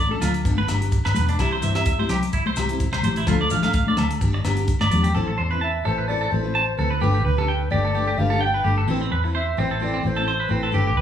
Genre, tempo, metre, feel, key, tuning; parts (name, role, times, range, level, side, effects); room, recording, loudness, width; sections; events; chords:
highlife guitar band; 128 BPM; 4/4; swing 54% on 16ths; A4 = 440 Hz
clean electric guitar; arpeggios; 0.0-11.0 s; C4 to A5; -25 LUFS; right 2 dB
vintage muted fingered electric bass; bass; 0.0-11.0 s; E1 to G2; -23 LUFS; equal
picked steel-string acoustic guitar; accompaniment; 0.1-10.9 s; E3 to B4; -28 LUFS; left 4 dB
congas; percussion; 0.1-5.0 s; -26 LUFS; left 3 dB
tight funk drum kit; drums; 0.2-5.1 s; hi-hat, kick drum, rim click; -26 LUFS; equal
agogo bells; percussion; 0.2-4.9 s; -32 LUFS; left 5 dB
maracas; percussion; 0.2-5.1 s; -41 LUFS; left 4 dB
breathy clarinet; melody; 5.6-11.0 s; B4 to G5; -27 LUFS; equal
moderate large studio reverb, RT60 1.3 s; band playing live in one room, small room ambience; -19 LUFS; side -9 dB against mid
0.0-5.1 A section; 5.1-11.0 B section
0.5 G; 1.4 C; 3.3 Dm; 4.2 G; 5.1 Amadd9; 7.0 Gadd9; 8.9 Amadd9